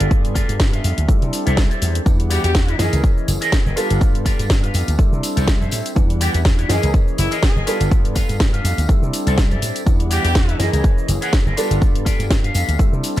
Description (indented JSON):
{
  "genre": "filtered disco house",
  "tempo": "123 BPM",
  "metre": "4/4",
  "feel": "swing 56% on 16ths",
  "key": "unclear",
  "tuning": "A4 = 439 Hz",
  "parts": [
    { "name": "dark baby grand piano", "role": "accompaniment", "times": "0.0-13.2 s", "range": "E3 to F#5", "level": "-25 LUFS", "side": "right 1 dB", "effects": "phaser, sidechain pumping" },
    { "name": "electric guitar with an envelope filter", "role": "riff", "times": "0.0-13.2 s", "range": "E4 to F#5", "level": "-26 LUFS", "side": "left 2 dB", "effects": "lush chorus, sidechain pumping" },
    { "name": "slap bass with an envelope filter", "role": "bass", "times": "0.0-13.2 s", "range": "F#1 to C3", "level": "-20 LUFS", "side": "equal", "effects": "tube saturation, sidechain pumping" },
    { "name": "house drum kit", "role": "drums", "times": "0.0-13.2 s", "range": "hi-hat, shaker, snare drum", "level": "-25 LUFS", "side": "left 1 dB", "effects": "sidechain pumping on hats, sidechain pumping on perc" },
    { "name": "electronic kick drum", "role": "drums", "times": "0.1-12.9 s", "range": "none", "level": "-16 LUFS", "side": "equal", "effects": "none" },
    { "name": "tambourine", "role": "percussion", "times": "2.1-13.2 s", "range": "none", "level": "-35 LUFS", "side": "equal", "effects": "sidechain pumping on perc" },
    { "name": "warm horn section", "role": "melody", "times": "2.3-2.8, 6.2-10.6 s", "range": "E4 to G#4", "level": "-27 LUFS", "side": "left 2 dB", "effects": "sidechain pumping, ping-pong delay" }
  ],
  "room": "digital ambience",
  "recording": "none",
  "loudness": "-15 LUFS",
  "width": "side -14 dB against mid",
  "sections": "0.0-13.2 A section",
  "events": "none",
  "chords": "0.0 G7; 1.1 C69; 2.1 Em9; 2.8 F#13; 3.8 G7; 5.0 C69; 6.0 Em9; 6.7 F#13; 7.7 G7; 8.9 C69; 9.9 Em9; 10.6 F#13; 11.6 G7"
}